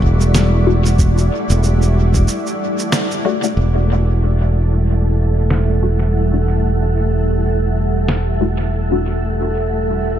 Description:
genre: ambient dub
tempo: 93 BPM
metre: 4/4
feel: swing 58% on 16ths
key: E minor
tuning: A4 = 439 Hz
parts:
  - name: granular cloud pad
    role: sustained chords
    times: 0.0-10.2 s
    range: G3 to F#5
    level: -21 LUFS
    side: equal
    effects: built-in reverb, vintage 12-bit sampler grit
  - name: filtered dub chord stab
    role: stabs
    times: 0.0-10.2 s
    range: G3 to F#4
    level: -23 LUFS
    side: left 4 dB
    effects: phaser, dub echo
  - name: modern bright fingered electric bass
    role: bass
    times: 0.0-10.2 s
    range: E1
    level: -15 LUFS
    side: equal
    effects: none
  - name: electronic kick drum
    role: drums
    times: 0.0-2.3 s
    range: none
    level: -16 LUFS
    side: equal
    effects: overdrive
  - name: electronic cabasa and snare drum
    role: drums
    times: 0.2-8.2 s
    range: none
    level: -23 LUFS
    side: right 1 dB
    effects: overdrive, low-pass filter on perc, low-pass filter on snare, low-pass filter on room, dub echo
  - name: wind-like tuned noise texture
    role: texture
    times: 3.9-10.2 s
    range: A4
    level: -25 LUFS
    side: right 6 dB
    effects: built-in reverb
room: little or no reverb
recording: none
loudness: -14 LUFS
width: side -10 dB against mid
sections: 0.0-3.6 A section; 3.6-10.2 B section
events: filter sweep on synth stab 0.0-3.6, 3.6-10.2; break 2.3-3.6; band accent 2.9-3.2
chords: 0.0 Em11

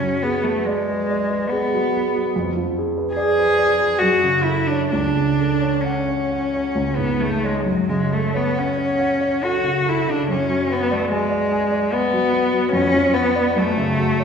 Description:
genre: classical, romantic duo for cello and grand piano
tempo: 65-74 BPM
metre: 3/4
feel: rubato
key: F# minor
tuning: A4 = 440 Hz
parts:
  - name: rich cello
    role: melody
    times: 0.0-14.2 s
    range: F#3 to Ab4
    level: -19 LUFS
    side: left 1 dB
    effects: none
  - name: warm grand piano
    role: accompaniment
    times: 0.0-14.2 s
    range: C#2 to G#5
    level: -22 LUFS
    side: right 1 dB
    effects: none
room: wet recital hall reverb, RT60 1.4 s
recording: recorded in a church or concert hall, nothing above 10.4 kHz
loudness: -17 LUFS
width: side -6 dB against mid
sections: 0.0-14.2 A section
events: none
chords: 0.0 G#m7b5/F#; 2.3 Fdim7; 4.0 F#m; 4.9 F#m/C#; 6.7 C#5; 7.7 F#m; 10.3 G#m7b5/F#; 12.7 C#7b9/E#; 13.6 F#m

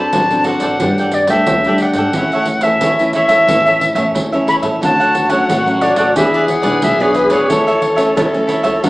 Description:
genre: samba and choro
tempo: 90 BPM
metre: 4/4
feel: straight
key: unclear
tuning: A4 = 440 Hz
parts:
  - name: jazz flute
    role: melody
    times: 0.0-8.3 s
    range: B4 to B5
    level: -15 LUFS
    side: equal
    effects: none
  - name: cavaquinho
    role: accompaniment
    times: 0.0-8.9 s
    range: D4 to G5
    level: -19 LUFS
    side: right 1 dB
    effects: none
  - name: nylon-string guitar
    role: accompaniment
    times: 0.0-8.9 s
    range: G2 to A4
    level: -19 LUFS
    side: left 1 dB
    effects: none
  - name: upright bass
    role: bass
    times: 0.0-8.9 s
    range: A1 to A2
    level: -26 LUFS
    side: equal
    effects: none
  - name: pandeiro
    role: percussion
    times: 0.1-8.9 s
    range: none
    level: -21 LUFS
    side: right 2 dB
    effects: none
  - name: growling tenor saxophone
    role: second line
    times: 4.8-8.9 s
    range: F#4 to A4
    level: -16 LUFS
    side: left 1 dB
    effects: none
room: wet large studio reverb, RT60 0.9 s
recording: band playing live in one room, small speaker sound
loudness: -11 LUFS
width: side -19 dB against mid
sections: 0.0-8.9 A section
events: none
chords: 0.0 D7; 0.8 Gsus2; 2.1 A; 4.8 Dmaj7; 6.2 E7; 7.5 A/E

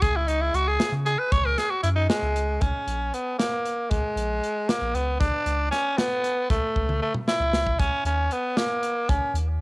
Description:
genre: progressive instrumental, band music in an uneven meter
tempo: 232 BPM (eighths)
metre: 5/8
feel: straight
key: C# dorian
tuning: A4 = 444 Hz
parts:
  - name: growling tenor saxophone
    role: melody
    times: 0.0-9.3 s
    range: G#3 to C#5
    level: -24 LUFS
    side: equal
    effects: cassette tape, analog delay
  - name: round analog bass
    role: bass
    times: 0.0-9.6 s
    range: A#1 to C#3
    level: -26 LUFS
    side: equal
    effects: none
  - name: modern studio drum kit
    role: drums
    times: 0.0-9.5 s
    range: hi-hat, kick drum, snare drum, toms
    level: -27 LUFS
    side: equal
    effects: cassette tape
room: light reverb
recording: home recording on cassette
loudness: -22 LUFS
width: side -24 dB against mid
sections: 0.0-2.6 A section; 2.6-9.6 B section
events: tenor saxophone solo 0.0-2.6; drum fill 6.8-7.8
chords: 0.0 C#m; 1.3 C#5; 5.2 N.C.; 7.8 C#sus2

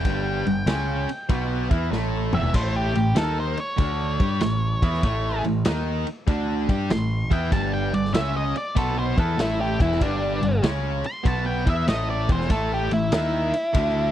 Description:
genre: blues rock power trio and southern rock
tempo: 96 BPM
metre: 4/4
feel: swing 66% on 8ths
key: A mixolydian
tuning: A4 = 440 Hz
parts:
  - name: octave-fuzz lead guitar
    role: melody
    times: 0.0-14.1 s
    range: D4 to C6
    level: -27 LUFS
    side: equal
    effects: distortion, slapback echo
  - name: overdriven electric guitar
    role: riff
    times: 0.0-14.1 s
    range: E2 to G4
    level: -26 LUFS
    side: equal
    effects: none
  - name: growling picked electric bass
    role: bass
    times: 0.0-14.1 s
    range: E1 to G2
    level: -26 LUFS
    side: equal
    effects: overdrive
  - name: raw garage drum kit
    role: drums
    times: 0.0-13.9 s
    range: crash cymbal, kick drum, ride cymbal, snare drum, toms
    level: -25 LUFS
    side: equal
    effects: none
room: little or no reverb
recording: dry, close 1970s-style studio recording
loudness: -21 LUFS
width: side -11 dB against mid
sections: 0.0-14.1 A section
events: lead electric guitar solo 0.0-14.1; drum fill 1.9-2.5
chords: 0.0 Em6; 2.5 A; 7.5 G5; 12.5 A5

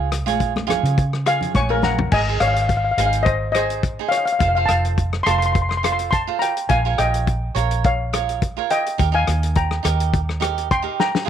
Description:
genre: calypso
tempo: 105 BPM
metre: 4/4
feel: swing 54% on 16ths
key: Ab major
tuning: A4 = 441 Hz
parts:
  - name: cavaquinho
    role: accompaniment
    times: 0.0-11.3 s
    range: Eb4 to C#5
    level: -25 LUFS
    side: right 15 dB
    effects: none
  - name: vintage muted fingered electric bass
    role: bass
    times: 0.0-10.9 s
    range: F1 to C#3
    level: -22 LUFS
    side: right 1 dB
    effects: none
  - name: warm soul drum kit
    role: drums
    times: 0.1-11.3 s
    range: crash cymbal, hi-hat, kick drum, rim click, snare drum, toms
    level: -23 LUFS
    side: left 3 dB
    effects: none
  - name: congas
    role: percussion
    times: 0.3-2.0 s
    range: none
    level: -27 LUFS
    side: equal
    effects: none
  - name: steel pan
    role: melody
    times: 1.3-11.3 s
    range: A#4 to C#6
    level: -20 LUFS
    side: left 3 dB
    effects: none
room: light reverb, small room reverb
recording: 1960s-style stereo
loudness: -17 LUFS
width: side -9 dB against mid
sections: 0.0-2.1 A section; 2.1-11.3 B section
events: steel pan solo 0.0-2.1; drum fill 1.8, 11.0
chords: 0.0 C#; 2.1 Ab; 4.4 F; 6.7 Bbm; 9.0 Eb

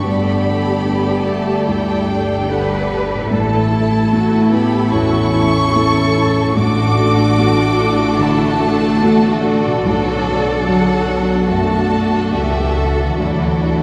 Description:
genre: cinematic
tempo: 73 BPM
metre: 4/4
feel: rubato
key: D major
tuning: A4 = 440 Hz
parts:
  - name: warm studio violin section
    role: melody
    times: 0.0-13.8 s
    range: D5 to D6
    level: -26 LUFS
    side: equal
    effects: none
  - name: warm studio violin section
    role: second line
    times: 0.0-13.8 s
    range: E4 to D5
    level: -26 LUFS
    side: equal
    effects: none
  - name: felt-muted upright piano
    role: accompaniment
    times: 0.0-13.8 s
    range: B1 to F#5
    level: -23 LUFS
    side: equal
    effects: none
  - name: warm studio viola section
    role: accompaniment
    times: 0.0-13.8 s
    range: F#3 to G4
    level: -24 LUFS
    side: equal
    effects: none
  - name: mellow French horn section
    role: sustained chords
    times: 0.0-13.8 s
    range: D3 to D4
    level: -22 LUFS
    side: equal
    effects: none
  - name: concert harp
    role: arpeggios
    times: 0.0-13.8 s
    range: G2 to F#5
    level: -28 LUFS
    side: equal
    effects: none
  - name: warm studio cello section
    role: bass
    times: 0.0-13.8 s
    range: D4 to B4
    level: -26 LUFS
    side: equal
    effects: none
  - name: warm symphonic double bass section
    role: bass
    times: 0.0-13.8 s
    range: G1 to D2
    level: -24 LUFS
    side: equal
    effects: none
room: wet church reverb, RT60 2.7 s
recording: none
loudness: -15 LUFS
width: mono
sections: 0.0-13.8 A section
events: none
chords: 0.1 Gsus2; 3.3 A; 6.6 D/A; 9.9 Bm7; 13.2 Dadd9

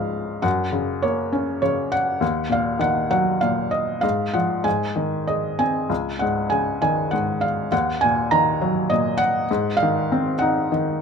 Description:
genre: classical, lyrical solo piano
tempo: 100 BPM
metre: 3/4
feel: rubato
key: unclear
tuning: A4 = 440 Hz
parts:
  - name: felt-muted upright piano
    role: solo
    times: 0.0-11.0 s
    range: Db2 to Bb5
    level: -19 LUFS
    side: equal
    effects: none
room: little or no reverb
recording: close, detailed microphones, lossy compression artefacts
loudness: -19 LUFS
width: side -6 dB against mid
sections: 0.0-11.0 A section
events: none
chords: 0.4 Gb; 2.2 Ebm; 4.0 Fm/Ab; 4.7 Ab; 5.9 Dbsus2; 7.7 Ebm; 9.5 Ab7

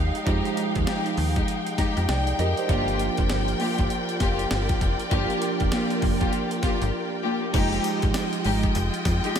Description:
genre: R&B, new jack swing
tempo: 99 BPM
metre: 4/4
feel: swing 61% on 16ths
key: F dorian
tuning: A4 = 440 Hz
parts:
  - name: bright tine electric piano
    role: accompaniment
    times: 0.0-9.4 s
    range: F3 to G5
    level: -28 LUFS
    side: right 5 dB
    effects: phaser
  - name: warm studio string section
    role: sustained chords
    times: 0.0-9.4 s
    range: Ab3 to G5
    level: -30 LUFS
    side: left 2 dB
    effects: none
  - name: slap-like FM bass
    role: bass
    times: 0.0-9.2 s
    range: F1 to F2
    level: -26 LUFS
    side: equal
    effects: none
  - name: breakbeat sampler-style drum kit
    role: drums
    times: 0.1-9.4 s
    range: crash cymbal, hi-hat, kick drum, snare drum, tambourine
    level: -28 LUFS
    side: equal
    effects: none
  - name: dark studio string section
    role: stabs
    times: 0.3-9.3 s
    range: Ab3 to G4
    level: -29 LUFS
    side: left 3 dB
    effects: ping-pong delay
room: moderate lush hall reverb, RT60 3.0 s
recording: dreamy mix soaked in reverb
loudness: -22 LUFS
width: side -8 dB against mid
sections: 0.0-7.5 A section; 7.5-9.4 B section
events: break 6.9-7.5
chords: 0.0 Fm9; 2.7 Gm7; 7.5 Fm9

